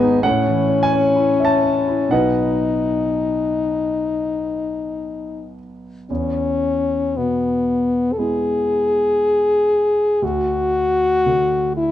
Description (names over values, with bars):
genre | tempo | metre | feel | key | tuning
classical, romantic duo for French horn and grand piano | 56-68 BPM | 4/4 | rubato | E major | A4 = 440 Hz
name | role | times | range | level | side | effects
clear French horn | melody | 0.0-11.9 s | B3 to A4 | -17 LUFS | left 3 dB | none
warm grand piano | accompaniment | 0.0-11.9 s | G#1 to B5 | -23 LUFS | right 4 dB | none
room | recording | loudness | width
light reverb | dark, warm production, nothing above 10.6 kHz | -16 LUFS | side -12 dB against mid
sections
0.0-6.1 A section; 6.1-11.9 B section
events
none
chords
0.2 A; 2.1 B; 6.1 E; 10.2 N.C.